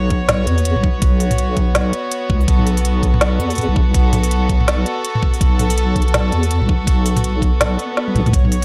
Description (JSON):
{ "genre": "half-time drum and bass", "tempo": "164 BPM", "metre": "4/4", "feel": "swing 59% on 16ths, half-time", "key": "unclear", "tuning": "A4 = 440 Hz", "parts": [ { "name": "rich chamber string section", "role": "sustained chords", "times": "0.0-8.6 s", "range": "B3 to C#5", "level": "-25 LUFS", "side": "equal", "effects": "sidechain pumping" }, { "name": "deep soft wobble bass", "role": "bass", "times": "0.0-8.6 s", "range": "B1 to E2", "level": "-19 LUFS", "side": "equal", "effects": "chorus" }, { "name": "electronic kick drum", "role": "drums", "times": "0.1-8.4 s", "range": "none", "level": "-18 LUFS", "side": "equal", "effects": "none" }, { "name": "organic electronic drum kit", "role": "drums", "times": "0.1-8.6 s", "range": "hi-hat, snare drum, toms", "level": "-22 LUFS", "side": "equal", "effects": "none" }, { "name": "swell", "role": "sound effects", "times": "7.8-8.3 s", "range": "none", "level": "-30 LUFS", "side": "equal", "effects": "none" } ], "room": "digital ambience", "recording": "dry, gritty hardware recording", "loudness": "-16 LUFS", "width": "mono", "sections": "0.0-8.6 A section", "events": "kick drops out 7.6-8.3; swell 7.8-8.3; drum fill 8.0-8.3", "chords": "0.0 B5" }